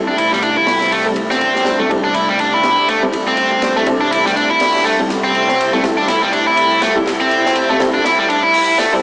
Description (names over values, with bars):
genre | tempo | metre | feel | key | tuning
breakbeat, breaks | 122 BPM | 4/4 | swing 58% on 16ths | A minor | A4 = 441 Hz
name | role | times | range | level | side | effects
lush unison pad | sustained chords | 0.0-9.0 s | C3 to E4 | -21 LUFS | equal | chorus, sidechain pumping
orchestra-hit-like synth stab | stabs | 0.0-9.0 s | G3 to A4 | -22 LUFS | equal | built-in reverb, analog delay
modern bright picked electric bass | bass | 0.0-8.6 s | G1 to A1 | -32 LUFS | equal | none
tight distorted guitar | riff | 0.1-8.9 s | G3 to E4 | -14 LUFS | equal | distortion, tube saturation, vintage 12-bit sampler grit, low-pass filter, analog delay
crunchy breakbeat drum kit | drums | 0.2-8.9 s | hi-hat, kick drum, ride cymbal, snare drum | -21 LUFS | equal | high-pass filter on kick, high-pass filter on cymbals, high-pass filter on hats, high-pass filter on snare, high-pass filter on room
room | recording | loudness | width
light reverb, studio reverb | dry, gritty hardware recording, high-pass filter, small speaker sound | -12 LUFS | side -27 dB against mid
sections
0.0-9.0 A section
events
build-up 0.0-9.0; filter sweep on synth stab 0.0-9.0; drum fill 5.1-9.0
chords
0.0 Am7